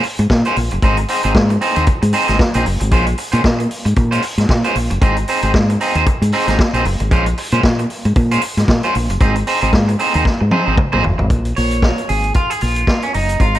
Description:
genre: disco.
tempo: 114 BPM.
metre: 4/4.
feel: swing 56% on 16ths.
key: Bb minor.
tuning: A4 = 440 Hz.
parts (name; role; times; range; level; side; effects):
electric guitar at the edge of break-up; accompaniment; 0.0-13.6 s; Ab3 to Db5; -18 LUFS; right 2 dB; none.
vintage drum kit; drums; 0.0-13.6 s; hi-hat, kick drum, snare drum, toms; -17 LUFS; equal; none.
fingered electric bass; bass; 0.2-13.6 s; Gb1 to Bb2; -16 LUFS; equal; none.
room: little or no reverb.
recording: none.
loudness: -13 LUFS.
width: side -13 dB against mid.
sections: 0.0-11.3 A section; 11.3-13.6 B section.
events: drum fill 10.3-11.3; clean electric guitar solo 11.3-13.6.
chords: 0.0 Bbm9; 0.8 Ab; 2.9 Bbm9; 5.0 Ab; 7.1 Bbm9; 9.2 Ab; 11.3 Bbm7.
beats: 0.30 | 0.82 1.35 1.87 2.40 | 2.92 3.44 3.97 4.49 | 5.01 5.54 6.06 6.59 | 7.11 7.63 8.16 8.68 | 9.21 9.73 10.25 10.78 | 11.30 11.83 12.35 12.88 | 13.40.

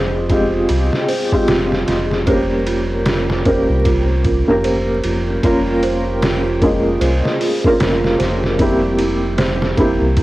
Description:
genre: trip hop.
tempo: 76 BPM.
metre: 4/4.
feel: swing 60% on 16ths.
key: F harmonic minor.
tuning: A4 = 438 Hz.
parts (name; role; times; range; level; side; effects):
felt-muted upright piano; accompaniment; 0.0-10.2 s; Ab3 to Bb4; -17 LUFS; equal; tremolo, cassette tape, tape echo.
worn celesta; arpeggios; 0.0-10.2 s; E4 to C5; -23 LUFS; right 5 dB; cassette tape, tape echo.
round analog bass; bass; 0.0-10.2 s; F1 to C2; -21 LUFS; equal; none.
backwards swelling texture; texture; 0.2-10.2 s; G3 to G4; -31 LUFS; equal; built-in reverb, cassette tape.
trip hop sampler-style drum kit; drums; 0.3-10.2 s; hi-hat, kick drum, ride cymbal, snare drum; -20 LUFS; equal; none.
room: little or no reverb.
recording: home recording on cassette, vinyl crackle.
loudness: -14 LUFS.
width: side -17 dB against mid.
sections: 0.0-10.2 A section.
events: none.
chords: 0.0 Fmadd9; 2.3 Gdim/F; 5.4 Bbm/F; 8.6 C7/F.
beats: 0.69 1.48 | 2.27 3.06 3.85 4.64 | 5.43 6.22 7.01 7.80 | 8.59 9.38 10.17.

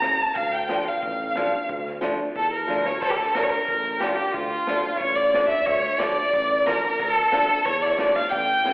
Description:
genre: klezmer.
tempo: 91 BPM.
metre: 2/4.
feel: straight.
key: D harmonic minor.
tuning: A4 = 437 Hz.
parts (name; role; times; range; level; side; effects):
dark violin; melody; 0.0-8.7 s; F4 to Bb5; -22 LUFS; equal; slapback echo.
rich violin; second line; 0.0-8.7 s; F4 to Bb5; -28 LUFS; equal; slapback echo.
nylon-string guitar; accompaniment; 0.0-8.7 s; E3 to D4; -28 LUFS; equal; slapback echo.
dark tuba; bass; 0.0-8.5 s; A1 to E2; -34 LUFS; equal; none.
crunchy breakbeat drum kit; drums; 0.0-8.7 s; crash cymbal, kick drum, snare drum; -34 LUFS; equal; slapback echo.
room: moderate lush hall reverb, RT60 2.9 s.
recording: live gig heard through the venue's PA, recital hall reverb, telephone sound.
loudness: -20 LUFS.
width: side -24 dB against mid.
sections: 0.0-3.0 A section; 3.0-8.7 B section.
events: violin solo 0.0-3.0; drum fill 2.7-3.0.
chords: 0.4 Dm.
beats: | 0.36 1.03 | 1.70 2.36 | 3.02 3.69 | 4.35 5.01 | 5.67 6.34 | 7.00 7.66 | 8.32.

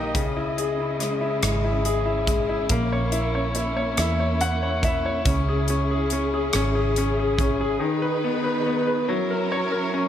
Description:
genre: six-eight pop ballad.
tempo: 47 BPM (dotted quarters).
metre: 6/8.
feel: straight.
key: unclear.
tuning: A4 = 440 Hz.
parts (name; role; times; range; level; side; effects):
bright concert grand piano; accompaniment; 0.0-10.1 s; C#3 to G5; -24 LUFS; left 3 dB; none.
warm studio string section; sustained chords; 0.0-10.1 s; C#3 to D#5; -28 LUFS; right 2 dB; none.
vintage muted fingered electric bass; bass; 0.0-7.8 s; G#1 to E2; -26 LUFS; right 1 dB; none.
modern studio drum kit; drums; 0.1-7.6 s; hi-hat, kick drum, rim click; -27 LUFS; right 1 dB; none.
room: light reverb, small room ambience.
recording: none.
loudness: -21 LUFS.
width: side -10 dB against mid.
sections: 0.0-10.1 A section.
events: grand piano fill 4.0-5.3.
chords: 0.1 C#madd9; 2.7 A#dim; 5.3 C#m; 7.8 G#m/D#; 9.1 F#7.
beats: | 0.15 1.43 | 2.70 3.98 | 5.26 6.53 | 7.81 9.08.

